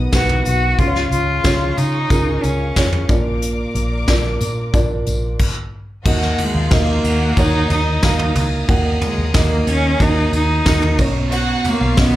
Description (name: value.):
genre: piano-driven pop.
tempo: 91 BPM.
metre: 4/4.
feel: straight.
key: Eb minor.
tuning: A4 = 440 Hz.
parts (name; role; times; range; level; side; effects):
felt-muted upright piano; accompaniment; 0.0-12.2 s; Bb2 to Gb5; -21 LUFS; right 2 dB; slapback echo.
warm studio string section; sustained chords; 0.0-12.2 s; B3 to D#6; -32 LUFS; left 3 dB; none.
vintage muted fingered electric bass; bass; 0.0-12.2 s; Bb1 to Db3; -19 LUFS; equal; none.
rich cello; melody; 0.1-12.2 s; Ab3 to F#4; -21 LUFS; equal; slapback echo.
soft brush drum kit; drums; 0.1-12.1 s; crash cymbal, hi-hat, kick drum, ride cymbal, snare drum, toms; -19 LUFS; equal; none.
tambourine; percussion; 0.1-12.1 s; none; -35 LUFS; left 2 dB; none.
warm symphonic violin section; second line; 6.1-12.2 s; Eb4 to Gb5; -25 LUFS; equal; slapback echo.
room: light reverb.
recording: live gig heard through the venue's PA, club reverb.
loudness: -15 LUFS.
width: side -14 dB against mid.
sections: 0.0-6.1 A section; 6.1-12.2 B section.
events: stop 5.4-6.1.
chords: 0.0 B; 0.8 Db; 3.1 Bb; 6.1 Ebm; 11.0 Bsus2.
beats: 0.13 | 0.79 1.45 2.10 2.76 | 3.42 4.08 4.74 5.40 | 6.06 6.71 7.37 8.03 | 8.69 9.35 10.01 10.66 | 11.32 11.98.